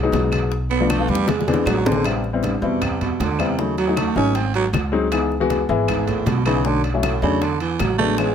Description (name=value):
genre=Afro-Cuban jazz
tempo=156 BPM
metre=4/4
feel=straight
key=E major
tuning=A4 = 445 Hz
part: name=warm baby grand piano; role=accompaniment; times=0.0-8.3 s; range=E3 to F#4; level=-21 LUFS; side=left 5 dB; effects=none
part: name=upright bass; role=bass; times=0.0-8.3 s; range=G#1 to E2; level=-24 LUFS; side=equal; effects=none
part: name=bongos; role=percussion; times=0.1-8.3 s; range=none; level=-29 LUFS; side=left 5 dB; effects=none
part: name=congas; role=percussion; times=0.1-8.3 s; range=none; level=-28 LUFS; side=equal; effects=none
part: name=timbales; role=percussion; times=0.1-8.3 s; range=none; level=-29 LUFS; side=right 4 dB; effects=none
part: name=claves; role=percussion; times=0.3-8.3 s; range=none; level=-32 LUFS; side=left 6 dB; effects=none
part: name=growling baritone saxophone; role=second line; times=0.7-8.3 s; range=E2 to C#4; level=-22 LUFS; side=right 6 dB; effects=none
room=light reverb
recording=none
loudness=-18 LUFS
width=side -8 dB against mid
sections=0.0-2.1 A section; 2.1-8.3 A section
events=baritone saxophone solo 0.0-8.3; drum fill 0.9-2.1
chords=0.0 Emaj9 (rootless); 0.5 Bm7b5; 1.3 E7b13; 2.1 Am9; 3.6 D#m7b5; 4.4 G#7; 5.1 C#m7; 6.7 Bm7; 7.4 E7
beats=0.13 | 0.52 0.90 1.28 1.67 | 2.05 2.44 2.82 3.20 | 3.59 3.97 4.35 4.74 | 5.12 5.50 5.89 6.27 | 6.65 7.04 7.42 7.80 | 8.18